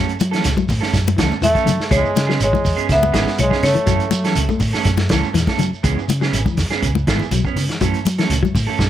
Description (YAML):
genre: afrobeat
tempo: 122 BPM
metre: 4/4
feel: straight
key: unclear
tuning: A4 = 441 Hz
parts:
  - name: semi-hollow electric guitar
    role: arpeggios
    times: 0.0-8.6 s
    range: C#3 to A3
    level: -25 LUFS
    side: left 7 dB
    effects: tremolo, tape echo
  - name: electric guitar at the edge of break-up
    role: stabs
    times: 0.0-8.8 s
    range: E3 to A4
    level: -24 LUFS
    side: right 11 dB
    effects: spring reverb
  - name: fingered electric bass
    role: bass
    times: 0.0-8.9 s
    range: G#1 to F#3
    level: -20 LUFS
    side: equal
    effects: none
  - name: vintage drum kit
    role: drums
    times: 0.1-8.9 s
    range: hi-hat, kick drum, snare drum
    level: -21 LUFS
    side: equal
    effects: none
  - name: shekere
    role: percussion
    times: 0.1-8.9 s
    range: none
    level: -28 LUFS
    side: right 4 dB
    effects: none
  - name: congas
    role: percussion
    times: 0.2-8.9 s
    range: none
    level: -24 LUFS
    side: left 7 dB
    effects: none
  - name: marimba with hard mallets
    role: melody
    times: 1.4-4.6 s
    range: C#5 to E5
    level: -19 LUFS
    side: left 1 dB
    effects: none
  - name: brilliant trombone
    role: second line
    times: 1.4-4.6 s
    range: G#3 to B3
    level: -25 LUFS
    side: right 6 dB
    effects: tape echo
room: light reverb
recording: none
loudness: -15 LUFS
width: side -11 dB against mid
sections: 0.0-8.9 A section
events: none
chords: 0.0 F#m7; 1.9 C#m7; 3.9 F#m7; 5.8 C#m7; 7.8 F#m7